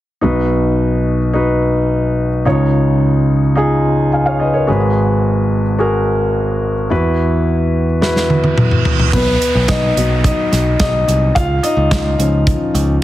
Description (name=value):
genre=piano-driven pop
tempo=108 BPM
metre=4/4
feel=straight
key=B major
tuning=A4 = 440 Hz
part: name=warm concert grand piano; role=accompaniment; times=0.2-13.0 s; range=G#1 to G#5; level=-13 LUFS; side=equal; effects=none
part: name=modern studio drum kit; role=drums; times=8.0-12.9 s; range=crash cymbal, hi-hat, kick drum, snare drum, toms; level=-16 LUFS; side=equal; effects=none
part: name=reverse cymbal and downlifter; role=sound effects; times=8.3-13.0 s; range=none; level=-25 LUFS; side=right 4 dB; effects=none
part: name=modern bright picked electric bass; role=bass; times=9.1-13.0 s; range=B1 to C#2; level=-16 LUFS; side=equal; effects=none
room=moderate large studio reverb, RT60 1.1 s, small room ambience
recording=heavily compressed radio sound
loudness=-12 LUFS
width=side -14 dB against mid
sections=0.2-9.1 A section; 9.1-13.0 B section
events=drum fill 8.0-9.1; reverse cymbal 8.3-9.1; grand piano solo 9.1-13.0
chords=0.2 B; 2.4 C#add9; 4.7 G#m7; 6.9 Esus2; 9.1 B; 11.4 C#add9